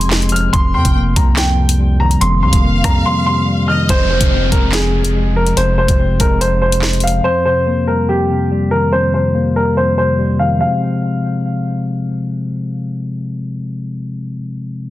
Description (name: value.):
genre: hip hop, drill.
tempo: 143 BPM.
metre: 4/4.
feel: half-time.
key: F minor.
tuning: A4 = 439 Hz.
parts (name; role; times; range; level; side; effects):
warm upright piano; melody; 0.0-11.8 s; G4 to F6; -18 LUFS; equal; low-pass filter, ping-pong delay.
dark studio violin section; second line; 0.0-3.9 s; Eb5 to G5; -25 LUFS; equal; ping-pong delay.
mellow tine electric piano; accompaniment; 0.0-14.9 s; F2 to C4; -17 LUFS; left 1 dB; low-pass filter.
long sustained 808-style bass; bass; 0.0-7.2 s; F1 to F2; -17 LUFS; equal; none.
drill drum kit; drums; 0.0-7.1 s; handclaps, hi-hat, kick drum, rim click, snare drum; -15 LUFS; equal; none.
downlifter; sound effects; 3.9-7.2 s; none; -24 LUFS; right 1 dB; none.
room: light reverb, digital ambience.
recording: dense, heavily limited modern master.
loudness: -12 LUFS.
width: side -15 dB against mid.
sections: 0.0-3.9 A section; 3.9-10.6 B section; 10.6-14.0 C section.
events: silent gap 3.1-3.9; filter sweep 3.9-10.6.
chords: 0.0 Fm; 0.5 Cm7/F; 3.9 Fm; 7.2 Cm7/F; 10.6 Fm.